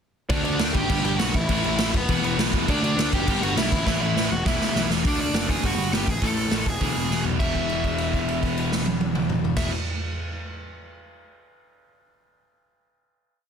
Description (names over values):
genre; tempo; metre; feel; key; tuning
punk rock; 204 BPM; 4/4; straight; unclear; A4 = 440 Hz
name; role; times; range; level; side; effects
dark smooth lead guitar; melody; 0.3-9.7 s; B3 to A5; -28 LUFS; equal; overdrive
biting overdriven guitar; riff; 0.3-9.7 s; E2 to D4; -28 LUFS; right 14 dB; none
sludgy distorted guitar; riff; 0.3-9.7 s; E2 to D4; -29 LUFS; left 14 dB; overdrive
fuzz picked electric bass; bass; 0.3-9.7 s; E1 to D2; -29 LUFS; equal; overdrive
raw garage drum kit; drums; 0.3-9.6 s; crash cymbal, hi-hat, kick drum, snare drum, toms; -25 LUFS; equal; none
room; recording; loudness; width
little or no reverb; dense, heavily limited modern master; -21 LUFS; side -7 dB against mid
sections
0.3-5.0 riff; 5.0-7.4 outro; 7.4-9.7 final chord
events
drum fill 3.9-5.0, 7.1; held note 7.4-9.6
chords
0.3 D5; 0.9 G; 1.3 A5; 1.9 E5; 2.7 D; 3.3 G; 3.7 A5; 4.3 E5; 5.0 D; 5.6 G5; 6.1 A5; 6.7 E; 7.4 E5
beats
| 0.31 0.60 0.90 1.20 | 1.49 1.79 2.09 2.38 | 2.68 2.98 3.27 3.57 | 3.87 4.16 4.46 4.75 | 5.04 5.34 5.63 5.93 | 6.22 6.51 6.81 7.10 | 7.39 7.69 7.98 8.28 | 8.57 8.86 9.16 9.45